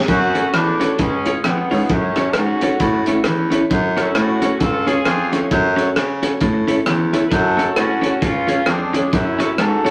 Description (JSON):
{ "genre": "ska", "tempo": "133 BPM", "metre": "4/4", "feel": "swing 59% on 8ths", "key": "F# minor", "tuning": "A4 = 440 Hz", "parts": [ { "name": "clear horn section", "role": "melody", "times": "0.1-9.9 s", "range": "G#3 to B4", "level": "-24 LUFS", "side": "equal", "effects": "none" }, { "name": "electric guitar at the edge of break-up", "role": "riff", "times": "0.1-9.7 s", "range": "C#3 to C#4", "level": "-28 LUFS", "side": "equal", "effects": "phaser, tape echo" }, { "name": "breathy baritone saxophone", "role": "bass", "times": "0.1-9.9 s", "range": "C#2 to C#3", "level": "-23 LUFS", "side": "equal", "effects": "none" }, { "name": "crunchy breakbeat drum kit", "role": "drums", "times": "0.1-9.9 s", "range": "hi-hat, kick drum, rim click", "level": "-24 LUFS", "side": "equal", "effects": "tape echo" }, { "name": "dark upright piano", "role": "stabs", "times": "0.3-9.9 s", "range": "C#4 to C#5", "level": "-28 LUFS", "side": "equal", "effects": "none" }, { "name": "clean electric guitar", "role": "accompaniment", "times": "0.4-9.9 s", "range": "C#4 to C#5", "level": "-26 LUFS", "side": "equal", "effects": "tape echo" } ], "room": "wet studio reverb, RT60 0.6 s", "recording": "vinyl crackle", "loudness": "-18 LUFS", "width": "mono", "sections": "0.1-9.9 A section", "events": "none", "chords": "0.1 F#m; 1.0 C#; 1.9 F#m; 2.8 A; 3.7 F#m; 4.6 C#; 5.5 F#m; 6.4 A; 7.3 F#m; 8.2 C#; 9.1 F#m" }